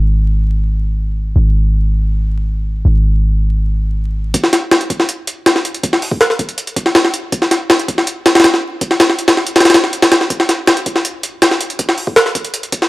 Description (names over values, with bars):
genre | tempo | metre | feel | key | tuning
drum and bass, jungle | 161 BPM | 4/4 | straight | unclear | A4 = 440 Hz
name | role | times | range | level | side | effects
warm 808-style bass | bass | 0.0-4.3 s | Ab1 | -13 LUFS | equal | none
jungle sampler-style drum kit | drums | 4.3-12.9 s | hi-hat, kick drum, snare drum | -11 LUFS | equal | overdrive, high-pass filter on hats, high-pass filter on kick, high-pass filter on snare
room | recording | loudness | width
light reverb | vinyl crackle | -12 LUFS | side -18 dB against mid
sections
0.0-4.3 A section; 4.3-12.9 B section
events
build-up 4.3-12.9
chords
none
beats
0.24 0.61 0.99 | 1.36 1.73 2.11 2.48 | 2.85 3.22 3.60 3.97 | 4.34 4.71 5.09 5.46 | 5.83 6.21 6.58 6.95 | 7.32 7.70 8.07 8.44 | 8.81 9.19 9.56 9.93 | 10.30 10.68 11.05 11.42 | 11.79 12.17 12.54